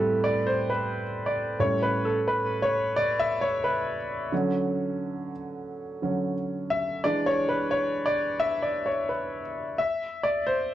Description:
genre	R&B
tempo	88 BPM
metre	4/4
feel	swing 63% on 16ths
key	unclear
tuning	A4 = 440 Hz
part	warm concert grand piano	solo	0.0-10.7 s	A2 to E5	-25 LUFS	equal	none
room	moderate studio reverb, RT60 0.6 s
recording	worn, warbling old tape, cassette tape, warbly pitch drift, nothing above 10.6 kHz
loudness	-24 LUFS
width	side -12 dB against mid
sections	0.0-10.7 A section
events	grand piano solo 0.0-10.7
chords	0.0 Am7; 1.6 A7; 4.3 Dmaj7; 7.0 E7; 9.8 Am (rootless)

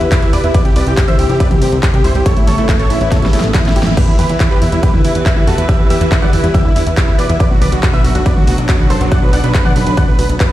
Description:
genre	uplifting trance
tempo	140 BPM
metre	4/4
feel	straight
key	E minor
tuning	A4 = 441 Hz
part	warm studio string section	sustained chords	0.0-10.5 s	C3 to B4	-21 LUFS	left 1 dB	sidechain pumping
part	analog pluck	arpeggios	0.0-10.5 s	F#2 to A4	-22 LUFS	right 3 dB	wide subtle chorus, sidechain pumping, tape echo
part	plucky analog bass	bass	0.0-10.4 s	A1 to E2	-16 LUFS	equal	tube saturation, sidechain pumping
part	big-room dance drum kit	drums	0.0-10.5 s	crash cymbal, handclaps, hi-hat, ride cymbal, snare drum, toms	-20 LUFS	equal	overdrive
part	dense compressed supersaw	melody	0.1-10.5 s	E4 to F#5	-20 LUFS	equal	vintage 12-bit sampler grit, sidechain pumping, tape echo
part	dark baby grand piano	second line	0.1-10.5 s	E5 to F#6	-24 LUFS	equal	sidechain pumping, tape echo
part	electronic kick drum	drums	0.1-10.5 s	none	-13 LUFS	equal	overdrive
room	light reverb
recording	played on a big sound system in a bare room, large studio reverb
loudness	-10 LUFS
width	side -14 dB against mid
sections	0.0-4.0 A section; 4.0-10.5 A section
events	drop 0.0-4.0, 4.0-10.5; drum fill 3.1-4.0; band accent 3.8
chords	0.0 Em; 0.5 C; 2.3 Aadd9; 4.0 Em; 7.4 Bm

